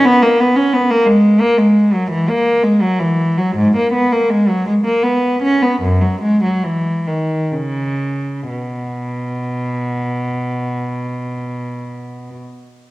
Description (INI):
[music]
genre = classical, baroque-style suite movement for unaccompanied cello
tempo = 59-88 BPM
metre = 3/4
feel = rubato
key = B major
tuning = A4 = 440 Hz
[part]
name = rich cello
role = solo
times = 0.0-12.4 s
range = F#2 to C#4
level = -14 LUFS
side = equal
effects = none
[sound]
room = wet recital hall reverb, RT60 1.8 s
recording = worn, warbling old tape, cassette tape, warbly pitch drift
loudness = -14 LUFS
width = side -18 dB against mid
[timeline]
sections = 0.0-8.5 A section; 8.5-12.9 B section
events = slowing down 2.5-8.5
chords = none